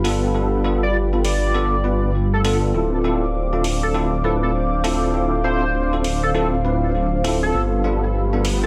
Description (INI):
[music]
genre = glitch hop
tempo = 100 BPM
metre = 4/4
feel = swing 62% on 16ths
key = D dorian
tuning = A4 = 440 Hz
[part]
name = dark analog pad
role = sustained chords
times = 0.0-8.7 s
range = G4 to D6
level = -29 LUFS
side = equal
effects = chorus
[part]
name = bell-like tine electric piano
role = stabs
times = 0.0-8.4 s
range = B3 to B4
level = -26 LUFS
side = equal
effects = ensemble chorus, low-pass filter, digital delay
[part]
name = phased detuned saw bass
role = bass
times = 0.0-8.7 s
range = D1 to G1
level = -24 LUFS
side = equal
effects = phaser
[part]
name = electronic hi-hat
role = drums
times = 0.0-8.6 s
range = none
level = -32 LUFS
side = equal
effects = overdrive, small room ambience
[part]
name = granular cloud pad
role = texture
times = 0.0-8.7 s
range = D4 to G5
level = -30 LUFS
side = equal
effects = built-in reverb
[part]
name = sync lead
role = melody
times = 0.8-8.7 s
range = A4 to D5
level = -28 LUFS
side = equal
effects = analog chorus, digital delay
[part]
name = riser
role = sound effects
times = 8.0-8.7 s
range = none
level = -35 LUFS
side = equal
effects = none
[sound]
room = light reverb, digital ambience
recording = none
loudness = -20 LUFS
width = mono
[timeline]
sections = 0.0-8.7 A section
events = riser 8.0-8.7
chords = 0.0 G7; 2.7 Dm7; 7.5 G7